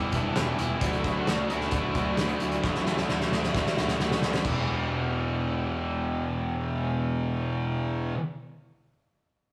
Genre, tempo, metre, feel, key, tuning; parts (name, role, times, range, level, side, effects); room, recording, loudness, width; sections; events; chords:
quiet-loud alternative rock; 132 BPM; 4/4; straight; E minor; A4 = 442 Hz
biting overdriven guitar; riff; 0.0-8.2 s; D3 to B4; -36 LUFS; equal
thick fuzz guitar; riff; 0.0-8.2 s; E2 to G4; -32 LUFS; equal; distortion
fuzz picked electric bass; bass; 0.0-8.1 s; E1 to D3; -36 LUFS; equal; overdrive
loose indie drum kit; drums; 0.1-4.6 s; crash cymbal, hi-hat, kick drum, snare drum; -32 LUFS; equal
octave-fuzz lead guitar; melody; 0.2-3.9 s; D4 to F#5; -38 LUFS; equal; distortion
moderate stone room reverb, RT60 1.3 s; rough rehearsal-room recording, warm saturation, studio ambience; -28 LUFS; mono
0.0-4.4 A section; 4.4-8.1 B section
drum fill 2.6-4.4
0.0 Em; 0.8 Dadd9; 4.4 Em